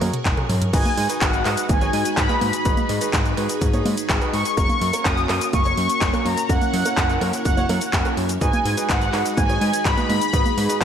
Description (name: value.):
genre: italo disco.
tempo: 125 BPM.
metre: 4/4.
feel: straight.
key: G# minor.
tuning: A4 = 437 Hz.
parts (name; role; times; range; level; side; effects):
string machine, full ensemble; sustained chords; 0.0-10.8 s; G#3 to C#6; -27 LUFS; equal; ensemble chorus.
clear grand piano; stabs; 0.0-10.8 s; A#3 to C#5; -30 LUFS; right 5 dB; none.
fat analog bass; bass; 0.0-10.8 s; F#1 to G#2; -25 LUFS; equal; none.
house drum kit; drums; 0.0-10.8 s; cabasa, congas, crash cymbal, handclaps, hi-hat, toms; -25 LUFS; equal; overdrive, gated reverb.
electronic kick drum; drums; 0.3-10.8 s; none; -22 LUFS; equal; overdrive.
mellow synth brass; melody; 0.7-10.8 s; F#5 to D#6; -24 LUFS; left 1 dB; chorus, cassette tape, digital delay.
room: light reverb.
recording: none.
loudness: -18 LUFS.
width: side -8 dB against mid.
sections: 0.7-10.8 A section.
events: drum fill 0.0-0.7.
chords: 0.0 F#add9; 0.7 G#m7; 4.6 F#; 8.4 G#m7.